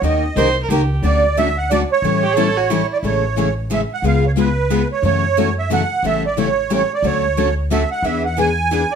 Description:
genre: acoustic string swing (jazz manouche)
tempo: 180 BPM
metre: 3/4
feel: swing 60% on 8ths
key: A major from 3.0 s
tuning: A4 = 437 Hz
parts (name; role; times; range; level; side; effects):
- musette accordion; melody; 0.0-9.0 s; B4 to G#5; -18 LUFS; right 5 dB; slapback echo
- picked steel-string acoustic guitar; accompaniment; 0.0-8.8 s; C#3 to Bb4; -21 LUFS; left 9 dB; none
- picked steel-string acoustic guitar; accompaniment; 0.0-8.8 s; C#3 to B4; -25 LUFS; right 4 dB; none
- upright bass; bass; 0.0-8.8 s; A1 to F#2; -21 LUFS; equal; none
- rich violin; second line; 0.4-3.0 s; E4 to C5; -22 LUFS; right 3 dB; none
room: moderate studio reverb, RT60 0.6 s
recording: none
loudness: -15 LUFS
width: side -7 dB against mid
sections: 0.0-3.0 A section; 3.0-9.0 B section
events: none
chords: 0.0 Eb7; 1.0 Dmaj7; 2.0 A7; 3.0 Amaj7; 4.0 C#7; 5.0 F#m7; 6.0 A7; 7.0 Dmaj7; 8.0 E7

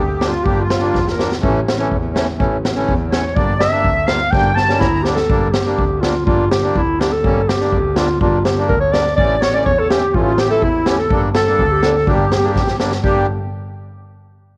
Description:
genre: klezmer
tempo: 124 BPM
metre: 2/4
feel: straight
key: G dorian sharp4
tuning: A4 = 440 Hz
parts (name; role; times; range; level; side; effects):
- mellow clarinet; melody; 0.0-13.3 s; E4 to A5; -20 LUFS; equal; none
- accordion; second line; 0.0-5.0, 9.2-13.3 s; E4 to Bb5; -25 LUFS; equal; light tremolo tuning
- accordion; accompaniment; 0.0-13.3 s; E3 to F4; -25 LUFS; equal; none
- bright double bass; bass; 0.0-13.3 s; G1 to E2; -24 LUFS; equal; none
- street-band drum kit; drums; 0.2-13.2 s; kick drum, snare drum; -22 LUFS; equal; cassette tape
room: light reverb, studio reverb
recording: home recording on cassette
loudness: -16 LUFS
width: mono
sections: 0.0-5.3 A section; 5.3-13.0 B section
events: clarinet solo 0.0-5.3; drum fill 0.9-1.4, 4.3-5.3, 12.6-13.0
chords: 0.0 Gm; 1.4 A; 3.4 Gm; 9.2 A; 11.1 Gm

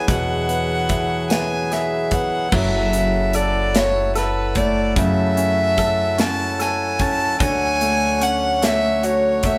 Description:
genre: six-eight pop ballad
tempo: 49 BPM (dotted quarters)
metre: 6/8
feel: straight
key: F# minor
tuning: A4 = 440 Hz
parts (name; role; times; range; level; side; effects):
- warm violin; melody; 0.0-9.6 s; B4 to A5; -23 LUFS; equal; none
- clear baby grand piano; accompaniment; 0.0-9.6 s; B2 to A4; -28 LUFS; equal; none
- bright tonewheel organ; sustained chords; 0.0-9.6 s; D3 to C#5; -28 LUFS; equal; none
- upright bass; bass; 0.0-9.6 s; F#1 to F#2; -27 LUFS; equal; none
- modern studio drum kit; drums; 0.1-9.6 s; crash cymbal, hi-hat, kick drum, snare drum; -26 LUFS; equal; none
room: wet studio reverb, RT60 0.8 s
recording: band playing live in one room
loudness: -19 LUFS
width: mono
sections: 0.0-2.5 A section; 2.5-9.6 A section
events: none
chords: 0.0 Eadd9; 2.5 F#m7; 7.4 Dmaj7

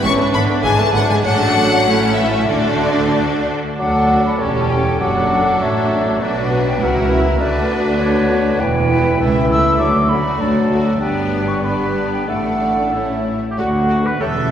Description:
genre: quick classical-period movement for symphony orchestra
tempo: 91-102 BPM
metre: 2/4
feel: rubato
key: D major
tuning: A4 = 441 Hz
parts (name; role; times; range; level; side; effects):
- rich studio violin section; melody; 0.0-14.3 s; A4 to C#6; -23 LUFS; left 3 dB; none
- rich studio violin section; second line; 0.0-14.5 s; D4 to E5; -28 LUFS; left 1 dB; none
- clear studio viola section; accompaniment; 0.0-14.3 s; D3 to G4; -23 LUFS; right 1 dB; none
- mellow French horn section; sustained chords; 0.0-14.5 s; D3 to G4; -24 LUFS; left 1 dB; none
- clear studio cello section; bass; 0.0-14.5 s; C#2 to D3; -22 LUFS; right 1 dB; none
- rich studio double bass section; bass; 0.0-14.5 s; E1 to D2; -22 LUFS; right 2 dB; none
- mellow clarinet; second line; 3.8-14.3 s; C#4 to B4; -25 LUFS; left 1 dB; none
- silver concert flute; second line; 3.8-14.5 s; C#5 to E6; -21 LUFS; equal; none
- warm oboe; second line; 3.8-14.5 s; F#4 to D5; -26 LUFS; equal; none
- mellow bassoon; accompaniment; 3.8-13.3 s; D3 to A3; -23 LUFS; right 2 dB; none
room: wet concert hall reverb, RT60 2.1 s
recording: recorded in a church or concert hall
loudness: -14 LUFS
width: side -9 dB against mid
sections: 0.0-3.8 A section; 3.8-13.6 B section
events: none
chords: 0.0 E7/G#; 1.2 D/A; 1.9 A; 2.5 D; 4.4 A7/E; 5.0 D/F#; 6.2 Bm; 6.8 F#7/C#; 7.4 Bm/D; 8.6 Em; 9.2 A/C#; 9.8 D; 11.0 G; 12.3 D/A; 12.9 A; 13.6 D

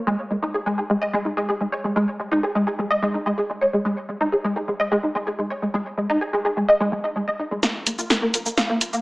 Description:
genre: melodic techno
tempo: 127 BPM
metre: 4/4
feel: straight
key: unclear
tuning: A4 = 440 Hz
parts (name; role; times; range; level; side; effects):
- wide unison pluck; arpeggios; 0.1-9.0 s; Ab3 to F5; -21 LUFS; equal; ensemble chorus, tape echo
- punchy analog drum machine; drums; 7.6-9.0 s; hi-hat, shaker, snare drum; -21 LUFS; equal; overdrive
- round analog bass; bass; 7.7-9.0 s; Bb1; -50 LUFS; equal; none
room: moderate digital room reverb, RT60 1.1 s, digital ambience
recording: small speaker sound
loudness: -20 LUFS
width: side -23 dB against mid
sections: 0.0-7.6 A section; 7.6-9.0 B section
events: build-up 7.6-9.0; drum fill 7.6-9.0; filter sweep on synth pluck 7.6-9.0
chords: 0.1 Dbsus2 (rootless); 7.6 Bb5

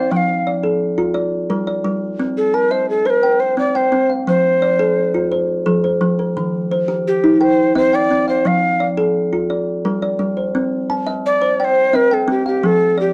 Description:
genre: southern african traditional, mbira-style interlocking cycle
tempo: 115 BPM (dotted quarters)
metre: 12/8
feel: straight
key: C equiheptatonic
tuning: A4 = 440 Hz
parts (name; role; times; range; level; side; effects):
- breathy Native American-style cedar flute; melody; 0.0-13.1 s; G4 to G5; -18 LUFS; equal; plate reverb
- kalimba; arpeggios; 0.0-13.1 s; Eb3+43c to A5-43c; -20 LUFS; equal; none
room: light reverb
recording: dark, warm production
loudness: -17 LUFS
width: mono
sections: 0.0-10.6 A section; 10.6-13.1 A section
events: none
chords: 0.1 F; 1.1 Gm; 2.2 Cm; 4.3 F; 6.4 Eb; 7.4 Cm; 8.5 F; 9.5 Gm; 10.6 Cm

